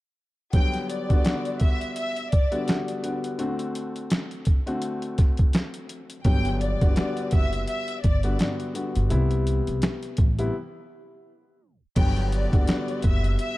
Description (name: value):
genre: hip hop, boom-bap hip-hop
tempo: 84 BPM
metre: 4/4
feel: swing 58% on 16ths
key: G major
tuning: A4 = 440 Hz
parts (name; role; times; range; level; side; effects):
- rich studio violin section; melody; 0.5-13.6 s; D5 to G5; -31 LUFS; left 1 dB; tape echo
- dark grand piano; accompaniment; 0.5-13.6 s; C3 to F#4; -30 LUFS; left 2 dB; none
- boom bap sampler-style drum kit; drums; 0.5-13.6 s; crash cymbal, hi-hat, kick drum, snare drum; -22 LUFS; equal; none
- upright bass; bass; 6.3-13.3 s; F#1 to C2; -25 LUFS; equal; none
room: small room ambience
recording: dark, warm production, tape stop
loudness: -22 LUFS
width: side -18 dB against mid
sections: 0.5-12.0 A section; 12.0-13.6 B section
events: break 10.5-12.0; tape stop 11.6-12.0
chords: 0.5 Gmaj7; 3.4 D7; 6.2 Gmaj7; 9.1 Cmaj7; 12.0 Gmaj7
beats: | 0.54 1.25 1.96 2.68 | 3.39 4.11 4.82 5.54 | 6.25 6.96 7.68 8.39 | 9.11 9.82 10.54 11.25 | 11.96 12.68 13.39